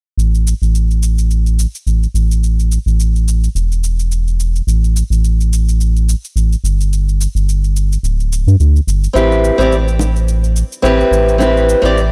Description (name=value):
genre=sunset chillout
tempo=107 BPM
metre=4/4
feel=swing 56% on 16ths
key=A minor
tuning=A4 = 439 Hz
part: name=round analog bass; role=bass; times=0.2-12.1 s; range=D1 to G2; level=-15 LUFS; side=equal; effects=none
part: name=cabasa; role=drums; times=0.2-12.1 s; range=none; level=-30 LUFS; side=equal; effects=overdrive
part: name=flamenco guitar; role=accompaniment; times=9.1-12.0 s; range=C4 to D5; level=-15 LUFS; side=equal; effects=digital delay
part: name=bongos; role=percussion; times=10.0-11.5 s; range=none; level=-25 LUFS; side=equal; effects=none
room=little or no reverb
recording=blown-out, overdriven recording, overdrive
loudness=-14 LUFS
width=mono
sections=0.2-12.1 A section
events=filter sweep on analog synth bass 0.2-12.1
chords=0.2 A5; 4.7 Gsus2; 6.9 G5; 9.2 Am7